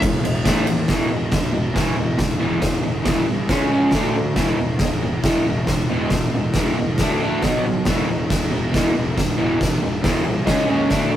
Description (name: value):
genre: garage rock duo or trio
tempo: 138 BPM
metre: 4/4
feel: straight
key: E major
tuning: A4 = 441 Hz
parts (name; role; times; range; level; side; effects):
- crunchy overdriven guitar; riff; 0.0-11.2 s; E2 to D4; -21 LUFS; equal; none
- fuzz fingered electric bass; bass; 0.0-11.2 s; E1 to D#2; -26 LUFS; equal; overdrive
- oversized low-tuned drum kit; drums; 0.0-11.0 s; crash cymbal, kick drum, ride cymbal, snare drum; -21 LUFS; equal; none
room: moderate stone room reverb, RT60 1.3 s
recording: rough rehearsal-room recording, warm saturation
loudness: -17 LUFS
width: side -11 dB against mid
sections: 0.9-11.2 A section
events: none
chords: 0.4 A5; 0.9 E5; 3.5 C#5; 3.9 D5; 4.4 E5; 7.0 D5; 7.4 B5; 7.9 E5; 10.5 C#5